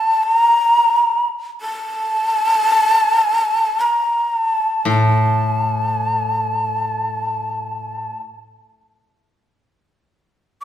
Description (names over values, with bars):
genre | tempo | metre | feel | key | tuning
japanese traditional, Japanese chamber music | free time | none | none | unclear | A4 = 439 Hz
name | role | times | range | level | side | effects
breathy shakuhachi | melody | 0.0-8.2 s | A5 to Bb5 | -16 LUFS | equal | none
koto | accompaniment | 4.9-8.1 s | A2 | -21 LUFS | left 2 dB | none
room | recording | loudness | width
wet recital hall reverb, RT60 1.4 s | recorded in a church or concert hall | -15 LUFS | side -11 dB against mid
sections
0.0-10.6 A section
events
none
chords
none